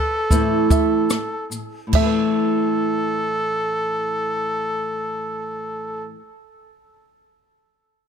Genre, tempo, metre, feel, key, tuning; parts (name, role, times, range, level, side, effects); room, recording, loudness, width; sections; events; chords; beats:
acoustic pop; 71 BPM; 4/4; straight; A minor; A4 = 439 Hz
clear trumpet; melody; 0.0-6.1 s; A4; -24 LUFS; equal; plate reverb, tape echo
bluegrass banjo; arpeggios; 0.0-4.4 s; B4 to E5; -27 LUFS; right 14 dB
flamenco guitar; accompaniment; 0.3-6.3 s; A2 to B4; -22 LUFS; equal
compact cocktail drum kit; drums; 0.3-2.1 s; crash cymbal, kick drum, rim click, shaker; -20 LUFS; equal
moderate studio reverb, RT60 0.5 s; -19 LUFS; side -7 dB against mid
0.0-1.9 A section; 1.9-5.3 B section
slowing down 0.0-1.9
0.0 Amadd9
0.31 1.11 | 1.94 2.78 3.62 4.47